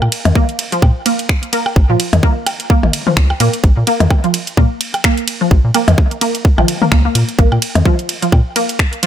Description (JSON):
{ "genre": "minimal techno", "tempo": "128 BPM", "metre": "4/4", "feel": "swing 57% on 16ths", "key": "Bb minor", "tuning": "A4 = 440 Hz", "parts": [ { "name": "rubbery square bass", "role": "bass", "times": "0.0-8.4 s", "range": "Bb1 to Bb2", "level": "-14 LUFS", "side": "equal", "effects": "sidechain pumping" }, { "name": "electronic percussion blips and toms", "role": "percussion", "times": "0.0-8.4 s", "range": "none", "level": "-18 LUFS", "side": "left 3 dB", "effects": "dub echo" }, { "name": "garage drum kit", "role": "drums", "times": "0.1-9.1 s", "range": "finger snaps, hi-hat, ride cymbal", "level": "-19 LUFS", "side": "right 2 dB", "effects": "overdrive" }, { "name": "resonant blip pluck", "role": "riff", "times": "0.4-9.1 s", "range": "F3 to Bb3", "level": "-18 LUFS", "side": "right 1 dB", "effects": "wide subtle chorus, sidechain pumping, digital delay" }, { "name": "electronic kick drum", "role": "drums", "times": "0.4-8.9 s", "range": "none", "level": "-12 LUFS", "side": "equal", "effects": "overdrive" } ], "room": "digital ambience", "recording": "none", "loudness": "-11 LUFS", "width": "side -10 dB against mid", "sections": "0.0-9.1 A section", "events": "none", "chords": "0.0 Bb5", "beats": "0.36 0.82 1.29 | 1.76 2.23 2.70 3.17 | 3.64 4.11 4.57 5.04 | 5.51 5.98 6.45 6.92 | 7.39 7.86 8.32 8.79" }